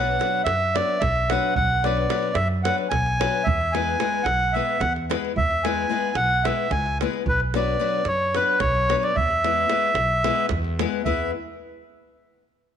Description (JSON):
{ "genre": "balkan folk, Balkan wedding band", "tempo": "221 BPM (eighths)", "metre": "7/8", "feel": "straight", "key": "E mixolydian", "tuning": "A4 = 440 Hz", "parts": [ { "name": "accordion", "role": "melody", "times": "0.0-11.3 s", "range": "B4 to G#5", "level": "-22 LUFS", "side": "right 1 dB", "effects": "slapback echo" }, { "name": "nylon-string guitar", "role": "accompaniment", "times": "0.0-11.3 s", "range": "F#3 to B4", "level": "-28 LUFS", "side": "left 10 dB", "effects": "none" }, { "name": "upright bass", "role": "bass", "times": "0.0-11.3 s", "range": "B1 to F#2", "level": "-28 LUFS", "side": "right 1 dB", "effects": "none" }, { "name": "davul", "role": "percussion", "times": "0.2-11.3 s", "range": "none", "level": "-29 LUFS", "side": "right 6 dB", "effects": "none" } ], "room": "moderate echo chamber reverb, RT60 1.9 s, small room reverb", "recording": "1960s-style stereo with parts hard left and right", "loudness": "-20 LUFS", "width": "side -8 dB against mid", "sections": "0.0-11.1 A section; 11.1-12.8 B section", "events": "none", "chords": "0.0 Bm; 3.5 E; 7.3 Bm; 9.2 E" }